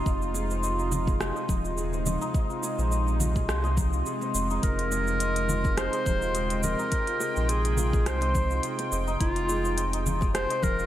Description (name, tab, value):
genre	organic downtempo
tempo	105 BPM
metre	4/4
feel	swing 55% on 16ths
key	F minor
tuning	A4 = 441 Hz
part	bowed-like drone	sustained chords	0.0-10.9 s	C3 to G5	-33 LUFS	right 1 dB	built-in reverb, sidechain pumping
part	santur	arpeggios	0.0-10.9 s	Eb4 to Eb5	-32 LUFS	left 1 dB	low-pass filter, tape echo
part	warm sub bass	bass	0.0-10.9 s	Eb1 to C2	-29 LUFS	equal	sidechain pumping
part	electronic kick drum	drums	0.1-10.8 s	none	-27 LUFS	equal	none
part	organic electronic drum kit	drums	0.1-10.9 s	cabasa, hi-hat, rim click	-34 LUFS	right 1 dB	none
part	bongos and congas	percussion	0.3-10.8 s	none	-35 LUFS	left 3 dB	none
part	warm clarinet	melody	4.6-10.9 s	F4 to C5	-30 LUFS	equal	digital delay
room	moderate lush hall reverb, RT60 1.8 s, digital ambience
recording	big arena sound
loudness	-24 LUFS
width	side -12 dB against mid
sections	0.0-10.9 A section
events	none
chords	0.0 Fm7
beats	| 0.06 0.63 1.20 1.78 | 2.35 2.92 3.49 4.06 | 4.63 5.20 5.78 6.35 | 6.92 7.49 8.06 8.63 | 9.20 9.78 10.35